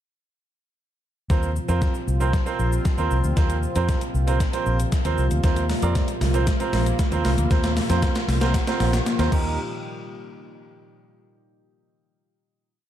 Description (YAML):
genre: dance-pop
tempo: 116 BPM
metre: 4/4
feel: straight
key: unclear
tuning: A4 = 440 Hz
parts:
  - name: clear baby grand piano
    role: accompaniment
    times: 1.3-9.6 s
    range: Bb3 to D5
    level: -27 LUFS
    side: right 6 dB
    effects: sidechain pumping
  - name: sweeping resonant pad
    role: sustained chords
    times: 1.3-9.6 s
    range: Bb2 to G4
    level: -30 LUFS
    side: left 1 dB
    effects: chorus, sidechain pumping
  - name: vintage muted fingered electric bass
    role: bass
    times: 1.3-9.6 s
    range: Bb1 to F2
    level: -22 LUFS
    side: left 1 dB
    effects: sidechain pumping
  - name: gated 80s digital drum machine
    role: drums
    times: 1.3-9.4 s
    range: crash cymbal, hi-hat, kick drum, shaker, snare drum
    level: -24 LUFS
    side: left 1 dB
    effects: gated reverb, gated reverb snare, overdrive
room: digital ambience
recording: dark, warm production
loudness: -20 LUFS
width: side -11 dB against mid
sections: 1.3-9.6 build; 9.6-11.6 final hit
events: build-up 1.3-9.6; drum fill 1.3-9.6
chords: 1.3 Bbsus2; 9.3 Eb; 9.6 N.C.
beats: | 1.30 1.82 2.34 2.85 | 3.37 3.89 4.41 4.92 | 5.44 5.96 6.47 6.99 | 7.51 8.03 8.54 9.06